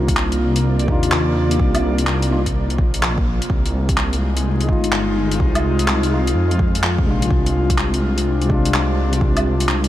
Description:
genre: future garage.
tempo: 126 BPM.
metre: 4/4.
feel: swing 65% on 16ths.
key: unclear.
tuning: A4 = 444 Hz.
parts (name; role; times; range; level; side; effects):
tine electric piano; accompaniment; 0.0-9.9 s; C3 to F4; -23 LUFS; left 2 dB; auto-pan, sidechain pumping, ping-pong delay.
airy breathy pad; sustained chords; 0.0-9.9 s; C3 to D5; -24 LUFS; left 1 dB; chorus, sidechain pumping.
dark detuned saw bass; bass; 0.0-9.9 s; G1 to F2; -20 LUFS; equal; sidechain pumping.
deep house drum kit; drums; 0.1-9.9 s; handclaps, hi-hat, woodblock; -24 LUFS; equal; overdrive.
electronic kick drum; drums; 0.1-9.3 s; none; -20 LUFS; equal; overdrive.
room: light reverb, digital ambience.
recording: vinyl crackle.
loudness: -16 LUFS.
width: side -13 dB against mid.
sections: 0.0-9.9 A section.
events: none.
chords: 0.0 Cm11; 3.5 Fm9; 7.3 Fm6/C.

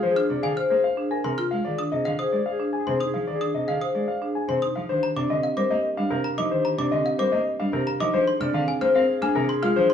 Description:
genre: classical, minimalist pattern music.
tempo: 111 BPM.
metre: 3/4.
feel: straight.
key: Eb major from 4.9 s.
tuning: A4 = 440 Hz.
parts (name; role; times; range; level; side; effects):
warm grand piano; melody; 0.0-9.9 s; Bb4 to Ab5; -25 LUFS; left 4 dB; none.
mellow clarinet; second line; 0.0-9.9 s; G4 to Ab4; -31 LUFS; left 2 dB; none.
rich cello; accompaniment; 0.0-9.9 s; C3 to C4; -30 LUFS; equal; none.
marimba with medium hard mallets; arpeggios; 0.2-9.9 s; C4 to C5; -27 LUFS; right 2 dB; none.
trough xylophone with wooden mallets; arpeggios; 0.2-9.9 s; F5 to F6; -33 LUFS; equal; none.
room: wet large studio reverb, RT60 1.3 s.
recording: worn, warbling old tape, cassette tape, warbly pitch drift, small room ambience.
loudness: -22 LUFS.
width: side -8 dB against mid.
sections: 0.0-4.9 A section; 4.9-9.9 B section.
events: none.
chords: 0.0 Bb7/C; 1.7 Fm7/C; 4.9 Eb69; 8.1 Bb7.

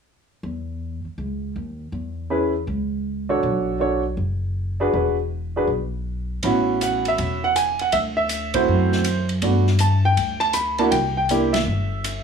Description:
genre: jazz piano trio.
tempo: 160 BPM.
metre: 4/4.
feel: swing 65% on 8ths.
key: A major.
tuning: A4 = 439 Hz.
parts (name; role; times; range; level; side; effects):
upright bass; bass; 0.4-12.2 s; E1 to G2; -24 LUFS; left 1 dB; none.
clear concert grand piano; melody; 2.3-12.2 s; A3 to B5; -20 LUFS; right 2 dB; none.
open jazz drum kit; drums; 6.4-12.2 s; hi-hat, kick drum, ride cymbal, snare drum; -29 LUFS; equal; none.
room: light reverb.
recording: small room reverb.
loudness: -19 LUFS.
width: side -6 dB against mid.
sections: 0.4-6.4 A section; 6.4-12.2 B section.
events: band accent 8.5, 11.5.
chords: 0.4 A (rootless); 3.4 Bm9; 4.9 E7; 6.4 A69; 7.9 D9; 9.4 Gmaj7; 10.9 C.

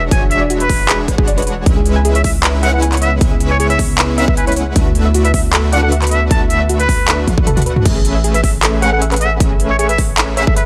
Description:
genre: future bass.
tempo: 155 BPM.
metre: 4/4.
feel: half-time.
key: A major.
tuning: A4 = 438 Hz.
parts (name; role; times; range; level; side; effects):
trumpet with straight mute; melody; 0.0-10.6 s; B4 to A5; -21 LUFS; equal; sidechain pumping, delay.
ethereal airy pad; sustained chords; 0.0-7.8 s; C#3 to G#4; -28 LUFS; equal; none.
supersaw stab; riff; 0.0-10.7 s; G#3 to F#5; -23 LUFS; equal; sidechain pumping.
long sustained 808-style bass; bass; 0.0-10.7 s; E1 to D2; -20 LUFS; equal; sidechain pumping.
big-room dance drum kit; drums; 0.1-10.6 s; crash cymbal, handclaps, hi-hat, toms; -21 LUFS; equal; none.
electronic kick drum; drums; 0.1-10.5 s; none; -18 LUFS; equal; none.
soft round pluck; arpeggios; 0.2-10.6 s; F#4 to G#5; -25 LUFS; equal; chorus, cassette tape, sidechain pumping, tape echo.
room: light reverb, digital ambience.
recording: none.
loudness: -14 LUFS.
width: mono.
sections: 0.0-7.9 A section; 7.9-10.7 A section.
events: drop 0.0-7.9, 7.9-10.7; drum fill 7.3-7.9.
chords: 0.0 E13; 1.7 C#m7; 4.8 D69; 7.9 Amaj9.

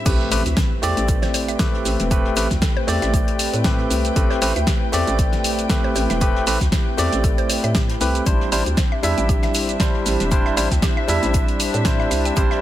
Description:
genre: deep house.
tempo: 117 BPM.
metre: 4/4.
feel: swing 56% on 16ths.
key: A minor.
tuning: A4 = 442 Hz.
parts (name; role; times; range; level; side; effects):
barky tine electric piano; stabs; 0.0-12.6 s; G3 to E5; -23 LUFS; equal; medium stereo tremolo, sidechain pumping, dub echo.
muted studio string section; texture; 0.0-12.6 s; C4 to G5; -31 LUFS; left 2 dB; sidechain pumping.
hollow soft pad; sustained chords; 0.1-12.6 s; A3 to C5; -30 LUFS; left 1 dB; chorus, sidechain pumping.
mallet-like synth pluck; arpeggios; 0.1-12.6 s; G4 to G5; -31 LUFS; right 2 dB; chorus, sidechain pumping, ping-pong delay.
hollow knocking FM bass; bass; 0.1-12.5 s; E1 to A2; -23 LUFS; equal; tube saturation, sidechain pumping.
deep house drum kit; drums; 0.1-12.5 s; crash cymbal, hi-hat, shaker, snare drum; -25 LUFS; equal; none.
electronic kick drum; drums; 0.1-12.5 s; none; -20 LUFS; equal; none.
jazz brush drum kit; drums; 0.1-12.6 s; hi-hat, shaker, snare drum; -36 LUFS; equal; none.
impact; sound effects; 0.1-2.1 s; none; -28 LUFS; equal; none.
room: light reverb.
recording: none.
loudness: -17 LUFS.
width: side -13 dB against mid.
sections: 0.1-12.6 A section.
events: drop 0.1-12.6; impact 0.1-2.1.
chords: 0.1 Am9; 8.3 Cadd9.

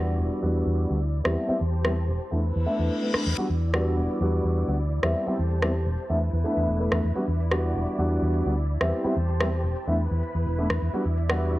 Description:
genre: filtered disco house.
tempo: 127 BPM.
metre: 4/4.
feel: straight.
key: E minor.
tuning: A4 = 440 Hz.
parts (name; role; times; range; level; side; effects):
dark baby grand piano; accompaniment; 0.0-11.6 s; G3 to F#4; -27 LUFS; equal; phaser, low-pass filter.
string machine, full ensemble; sustained chords; 0.0-11.6 s; E4 to A5; -34 LUFS; equal; ensemble chorus, low-pass filter.
hollow-body short-scale fingered electric bass; bass; 0.0-11.6 s; E1 to E2; -25 LUFS; equal; tube saturation, low-pass filter.
maracas; percussion; 0.1-11.5 s; none; -64 LUFS; left 1 dB; none.
electronic rim click; drums; 1.3-11.4 s; none; -29 LUFS; equal; none.
reverse cymbal; sound effects; 2.7-3.4 s; none; -35 LUFS; left 5 dB; none.
room: small room reverb.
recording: dry, gritty hardware recording, transformer saturation.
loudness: -23 LUFS.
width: side -17 dB against mid.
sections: 0.0-11.6 A section.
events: filter sweep 0.0-11.6; reverse cymbal 2.7-3.4.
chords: 0.0 Em7; 1.3 Am7/E; 2.2 E7sus4; 3.4 Em7; 5.0 Am7/E; 6.0 E7sus4; 7.2 Em7; 8.8 Am7/E; 9.8 E5; 10.9 Em7.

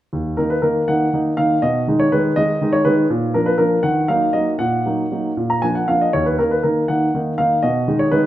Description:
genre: classical-period piano sonatina.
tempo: 80 BPM (dotted quarters).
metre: 6/8.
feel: rubato.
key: Eb minor.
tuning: A4 = 440 Hz.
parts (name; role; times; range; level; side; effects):
warm grand piano; solo; 0.1-8.3 s; Eb2 to Bb5; -16 LUFS; equal; none.
room: wet recital hall reverb, RT60 1.4 s.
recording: none.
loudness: -16 LUFS.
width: side -13 dB against mid.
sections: 0.1-8.3 A section.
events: none.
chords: 0.1 Ebm; 1.6 Abm/Cb; 3.1 Bb; 3.8 Ebm; 4.6 Ebm/Bb; 5.4 Bb; 6.1 Ebm; 7.6 Abm/Cb.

